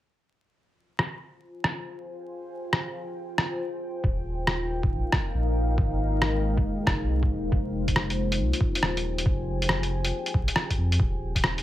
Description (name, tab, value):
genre	future garage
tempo	138 BPM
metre	4/4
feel	swing 66% on 16ths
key	F minor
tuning	A4 = 441 Hz
part	deep dark ambient pad	sustained chords	1.5-11.6 s	Ab3 to Ab5	-31 LUFS	left 1 dB	chorus, built-in reverb, vintage 12-bit sampler grit, sidechain pumping
part	lo-fi sampler-style drum kit	drums	1.0-11.6 s	hi-hat, rim click	-26 LUFS	equal	low-pass filter on snare, studio reverb, low-pass filter on hats
part	warm sub bass	bass	4.0-11.6 s	Eb1 to F2	-28 LUFS	equal	sidechain pumping
part	electronic kick drum	drums	4.0-11.4 s	none	-27 LUFS	equal	studio reverb
room	light reverb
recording	vinyl crackle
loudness	-24 LUFS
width	side -14 dB against mid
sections	0.6-7.5 A section; 7.5-11.6 B section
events	fade-in on ambient pad 0.6-7.5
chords	0.6 Fm; 4.0 Eb; 5.8 Ab6; 11.0 Eb